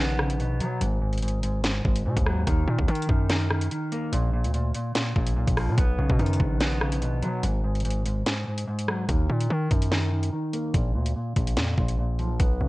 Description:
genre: hip hop, drill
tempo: 145 BPM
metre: 4/4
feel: half-time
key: Eb minor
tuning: A4 = 440 Hz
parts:
  - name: mellow electric guitar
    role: accompaniment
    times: 0.0-12.7 s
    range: Ab2 to B3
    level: -28 LUFS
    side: equal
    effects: low-pass filter
  - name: distorted 808-style bass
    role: bass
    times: 0.0-12.7 s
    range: Ab1 to F#3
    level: -26 LUFS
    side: equal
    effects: distortion
  - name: drill drum kit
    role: drums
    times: 0.2-12.5 s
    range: hi-hat, kick drum, rim click, snare drum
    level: -26 LUFS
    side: equal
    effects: none
room: digital ambience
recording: worn, warbling old tape, cassette tape, warbly pitch drift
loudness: -23 LUFS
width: side -20 dB against mid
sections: 0.0-9.1 A section; 9.1-12.7 B section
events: kick muted 8.3-9.1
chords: 0.0 Badd9; 0.8 Ab7(no3); 2.5 Ebm; 4.1 Bb; 5.8 Badd9; 7.4 Gbsus2/Ab; 9.1 Ebm; 10.7 Bb5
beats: 0.40 | 0.81 1.23 1.64 2.06 | 2.47 2.88 3.30 3.71 | 4.12 4.54 4.95 5.37 | 5.78 6.19 6.61 7.02 | 7.43 7.85 8.26 8.68 | 9.09 9.50 9.92 10.33 | 10.74 11.16 11.57 11.99 | 12.40

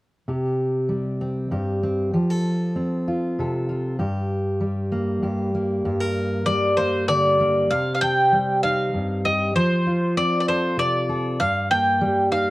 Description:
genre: folk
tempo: 65 BPM (dotted quarters)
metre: 6/8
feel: straight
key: unclear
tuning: A4 = 439 Hz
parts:
  - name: fingerpicked steel-string acoustic guitar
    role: accompaniment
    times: 0.3-12.5 s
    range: G2 to Bb4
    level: -22 LUFS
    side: equal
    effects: none
  - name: bowl-back mandolin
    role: melody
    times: 6.5-12.5 s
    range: C5 to G5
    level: -20 LUFS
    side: equal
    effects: none
room: light reverb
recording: worn, warbling old tape, cassette tape, warbly pitch drift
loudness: -20 LUFS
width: side -18 dB against mid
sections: 0.3-7.7 A section; 7.7-12.5 B section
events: none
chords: 0.3 C5; 2.1 F; 4.0 Gm; 7.7 Cm; 9.6 F; 11.4 Eb/G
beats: | 0.28 1.21 | 2.14 3.07 | 4.00 4.92 | 5.85 6.78 | 7.70 8.63 | 9.55 10.48 | 11.40 12.33

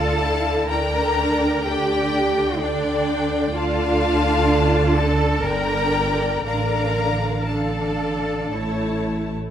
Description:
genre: classical, slow romantic movement for string orchestra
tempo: 57-65 BPM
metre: 3/4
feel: rubato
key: D minor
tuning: A4 = 440 Hz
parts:
  - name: rich studio violin section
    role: melody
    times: 0.0-9.0 s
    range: D5 to Bb5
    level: -27 LUFS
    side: left 6 dB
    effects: none
  - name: rich symphonic violin section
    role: second line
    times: 0.0-9.3 s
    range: C#5 to A5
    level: -27 LUFS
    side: left 3 dB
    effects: none
  - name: rich symphonic viola section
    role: accompaniment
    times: 0.0-9.3 s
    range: D3 to F4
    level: -24 LUFS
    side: equal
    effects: none
  - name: rich chamber double bass section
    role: bass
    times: 0.0-9.3 s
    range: G1 to D2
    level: -25 LUFS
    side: right 2 dB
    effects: none
  - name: rich symphonic cello section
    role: bass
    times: 0.0-9.0 s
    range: D4 to Bb4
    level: -24 LUFS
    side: right 2 dB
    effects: none
room: moderate concert hall reverb, RT60 1.9 s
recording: none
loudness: -18 LUFS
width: side -9 dB against mid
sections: 0.0-9.5 A section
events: none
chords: 0.0 Dm; 0.7 Gm/D; 3.5 Dm; 5.4 Gm; 6.4 Dm/A; 8.5 A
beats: | 0.69 1.66 2.60 | 3.53 4.47 5.44 | 6.45 7.46 8.51

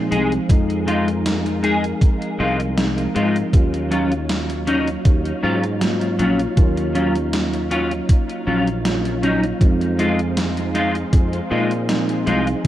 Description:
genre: vaporwave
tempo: 79 BPM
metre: 4/4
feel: swing 53% on 16ths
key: Eb dorian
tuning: A4 = 439 Hz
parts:
  - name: mellow tine electric piano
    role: accompaniment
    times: 0.0-12.7 s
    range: F3 to F4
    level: -24 LUFS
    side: right 1 dB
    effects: slow stereo tremolo, lush chorus, tape echo
  - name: soft string machine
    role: sustained chords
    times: 0.0-12.7 s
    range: Gb3 to F5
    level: -30 LUFS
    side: right 1 dB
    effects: ensemble chorus, vintage 12-bit sampler grit
  - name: sustaining fretless electric bass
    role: bass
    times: 0.0-12.7 s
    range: Bb1 to Bb2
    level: -24 LUFS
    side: equal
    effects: tube saturation, lush chorus
  - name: clean electric guitar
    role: riff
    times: 0.1-12.5 s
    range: Gb3 to Ab4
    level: -22 LUFS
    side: left 2 dB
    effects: ensemble chorus, tape echo
  - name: gated 80s digital drum machine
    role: drums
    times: 0.1-12.7 s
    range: hi-hat, snare drum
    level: -27 LUFS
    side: equal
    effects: gated reverb, gated reverb snare, overdrive
  - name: electronic kick drum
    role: drums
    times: 0.5-12.7 s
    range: none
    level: -14 LUFS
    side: equal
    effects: none
room: light reverb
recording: rough home demo mix, cassette tape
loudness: -17 LUFS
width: side -13 dB against mid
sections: 0.0-12.7 A section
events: none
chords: 0.0 Fm7; 3.5 Ebm9; 9.6 Fm7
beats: | 0.50 1.26 2.02 2.77 | 3.53 4.29 5.05 5.81 | 6.57 7.33 8.09 8.85 | 9.61 10.37 11.13 11.89 | 12.65

